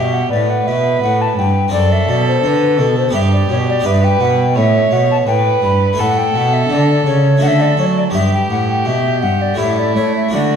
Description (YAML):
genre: classical, baroque-style sonata movement with continuo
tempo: 84 BPM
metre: 3/4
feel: rubato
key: unclear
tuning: A4 = 440 Hz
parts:
  - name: mellow hollow tenor recorder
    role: melody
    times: 0.0-10.6 s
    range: A4 to B5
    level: -17 LUFS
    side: left 5 dB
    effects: none
  - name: dark violin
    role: second line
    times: 0.0-10.6 s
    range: E4 to C#5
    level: -19 LUFS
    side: right 5 dB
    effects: none
  - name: harpsichord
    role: accompaniment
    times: 0.0-10.6 s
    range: F#2 to D5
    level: -22 LUFS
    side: equal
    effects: none
  - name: rich cello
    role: bass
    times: 0.0-10.6 s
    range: F#2 to A3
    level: -16 LUFS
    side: right 1 dB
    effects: none
room: wet recital hall reverb, RT60 1.2 s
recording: dark, warm production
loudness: -12 LUFS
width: side -7 dB against mid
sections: 0.0-10.6 A section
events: none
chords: 0.0 G; 1.7 D7/F#; 3.1 G; 6.0 A; 7.4 D; 8.1 Em/G; 9.6 A7